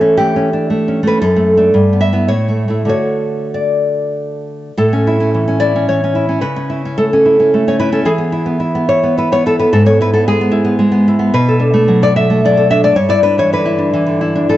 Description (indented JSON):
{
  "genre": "romantic piece for solo classical guitar",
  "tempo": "94-119 BPM",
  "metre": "3/4",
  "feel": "rubato",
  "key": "D major, A major from 4.8 s",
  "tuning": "A4 = 440 Hz",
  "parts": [
    { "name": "nylon-string guitar", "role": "solo", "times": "0.0-14.6 s", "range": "F#2 to E5", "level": "-11 LUFS", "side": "equal", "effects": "none" }
  ],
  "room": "moderate plate reverb, RT60 2.7 s",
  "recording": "dark, warm production, nothing above 7.9 kHz",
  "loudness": "-11 LUFS",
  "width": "side -14 dB against mid",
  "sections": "0.0-4.8 A section; 4.8-14.6 B section",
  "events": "none",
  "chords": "0.0 A7/E; 1.2 D/F#; 1.8 Em/G; 2.3 A; 2.9 D; 4.8 A; 6.4 A/C#; 8.1 E; 9.7 E/G#; 11.3 Bm7; 12.9 Em7/G",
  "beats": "0.18 0.70 | 1.22 1.75 2.31 | 2.92 3.55 4.17 | 4.78 5.34 5.88 | 6.43 6.98 7.54 | 8.10 8.63 9.17 | 9.71 10.24 10.77 | 11.31 11.85 12.39 | 12.92 13.47 14.02"
}